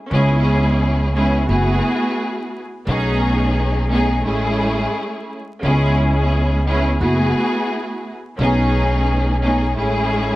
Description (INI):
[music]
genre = hip hop, boom-bap hip-hop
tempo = 87 BPM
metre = 4/4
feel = swing 56% on 16ths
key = C# minor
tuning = A4 = 440 Hz
[part]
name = warm studio string section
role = accompaniment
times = 0.1-10.4 s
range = G#3 to G#4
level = -18 LUFS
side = equal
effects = cassette tape, high-pass filter, low-pass filter
[part]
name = upright bass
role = bass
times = 0.1-10.4 s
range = F#1 to C#2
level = -18 LUFS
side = equal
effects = none
[sound]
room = small room ambience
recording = vinyl crackle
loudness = -16 LUFS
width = side -17 dB against mid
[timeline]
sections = 0.0-10.4 A section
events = none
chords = 0.1 C#m7; 1.5 F#m11; 2.9 B13; 4.2 Amaj7; 5.6 C#m7; 7.0 F#m11; 8.4 B13; 9.8 Amaj7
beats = | 0.11 0.80 1.49 2.18 | 2.87 3.56 4.25 4.94 | 5.63 6.32 7.01 7.70 | 8.39 9.08 9.77